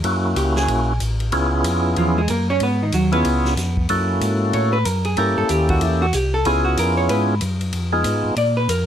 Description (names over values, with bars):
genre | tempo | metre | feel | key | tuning
soul jazz organ trio | 187 BPM | 4/4 | swing 62% on 8ths | unclear | A4 = 440 Hz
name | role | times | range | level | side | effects
percussive tonewheel organ | melody | 0.0-8.4 s | Ab3 to A4 | -20 LUFS | equal | slow rotary speaker
mellow tonewheel organ | bass | 0.0-8.9 s | A1 to Bb2 | -21 LUFS | equal | chorus vibrato, slow rotary speaker
vintage drum kit | drums | 0.0-8.8 s | hi-hat, kick drum, ride cymbal, snare drum | -29 LUFS | left 1 dB | none
vintage hollow-body jazz guitar | accompaniment | 0.4-8.9 s | Eb3 to D5 | -21 LUFS | right 1 dB | none
room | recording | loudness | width
little or no reverb | close, detailed microphones | -17 LUFS | side -9 dB against mid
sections
0.0-8.9 A section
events
hollow-body jazz guitar solo 0.0-8.9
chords
0.0 Gb7#9; 1.3 Db7#9; 2.6 Abm7; 3.3 Db7#9; 3.9 Gb7#9; 5.2 Gdim7; 6.5 Db7#9; 7.7 Fm7b5